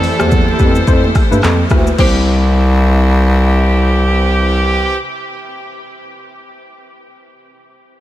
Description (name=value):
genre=afrobeats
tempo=108 BPM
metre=4/4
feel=swing 58% on 16ths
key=C major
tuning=A4 = 440 Hz
part: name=marimba with medium mallets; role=melody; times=0.0-5.7 s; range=C5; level=-30 LUFS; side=right 2 dB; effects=none
part: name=warm horn section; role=second line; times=0.0-5.0 s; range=E3 to A4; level=-20 LUFS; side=right 2 dB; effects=none
part: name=warm studio string section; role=sustained chords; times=0.0-5.0 s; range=C3 to C5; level=-24 LUFS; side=left 1 dB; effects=sidechain pumping
part: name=warm bass clarinet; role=bass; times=0.0-5.0 s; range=C2 to G2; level=-12 LUFS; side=equal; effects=none
part: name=afro-pop drum kit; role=drums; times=0.0-2.1 s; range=crash cymbal, handclaps, hi-hat, kick drum, rim click, shaker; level=-16 LUFS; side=equal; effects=none
part: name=soft round pluck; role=accompaniment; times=0.2-5.7 s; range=G3 to C5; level=-22 LUFS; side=left 3 dB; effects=chorus
part: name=congas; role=percussion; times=0.2-2.2 s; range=none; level=-23 LUFS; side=right 5 dB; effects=none
room=light reverb, small room ambience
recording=none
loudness=-10 LUFS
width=side -14 dB against mid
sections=0.0-2.0 A section; 2.0-4.2 B section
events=none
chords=0.0 Fmaj9#11; 2.0 C